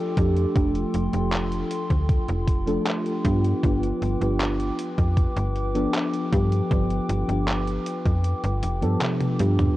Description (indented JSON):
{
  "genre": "vaporwave",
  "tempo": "78 BPM",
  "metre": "4/4",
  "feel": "straight",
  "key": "unclear",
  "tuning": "A4 = 439 Hz",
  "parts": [
    { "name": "mellow FM electric piano", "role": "accompaniment", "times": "0.0-9.8 s", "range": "F3 to A4", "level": "-26 LUFS", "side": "equal", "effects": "phaser, lush chorus, analog delay" },
    { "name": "warbly tape-like pad", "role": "sustained chords", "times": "0.0-9.7 s", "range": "F4 to D6", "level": "-31 LUFS", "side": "equal", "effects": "chorus, built-in reverb" },
    { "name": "slap-like FM bass", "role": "bass", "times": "0.2-9.7 s", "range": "F1 to G2", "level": "-24 LUFS", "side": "equal", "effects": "none" },
    { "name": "detuned 8-bit digital drum machine", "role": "drums", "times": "0.2-9.7 s", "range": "handclaps, hi-hat, toms", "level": "-30 LUFS", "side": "equal", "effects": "overdrive" },
    { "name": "electronic kick drum", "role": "drums", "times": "0.2-8.2 s", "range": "none", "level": "-23 LUFS", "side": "equal", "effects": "overdrive" }
  ],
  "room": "light reverb",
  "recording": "worn, warbling old tape, cassette tape, warbly pitch drift",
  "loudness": "-21 LUFS",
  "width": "side -16 dB against mid",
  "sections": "0.0-9.8 A section",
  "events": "kick drops out 8.2-9.8; drum fill 9.0-9.8",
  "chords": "0.0 F69; 3.2 G7"
}